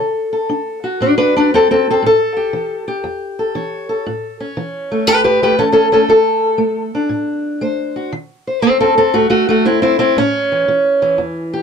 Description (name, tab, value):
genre	acoustic country blues, solo or duo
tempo	118 BPM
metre	4/4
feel	swing 66% on 8ths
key	A mixolydian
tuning	A4 = 443 Hz
part	fingerpicked steel-string acoustic guitar	solo	0.0-11.6 s	E2 to C#5	-13 LUFS	equal	none
room	little or no reverb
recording	close, detailed microphones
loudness	-12 LUFS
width	side -6 dB against mid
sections	0.0-11.6 A section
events	steel-string acoustic guitar solo 0.0-11.6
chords	0.0 D7; 2.0 A7; 6.1 D7(no3); 8.1 Am6; 10.2 A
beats	0.49 1.00 1.51 | 2.02 2.52 3.03 3.54 | 4.05 4.56 5.07 5.58 | 6.09 6.60 7.11 7.62 | 8.12 8.63 9.14 9.65 | 10.16 10.67 11.18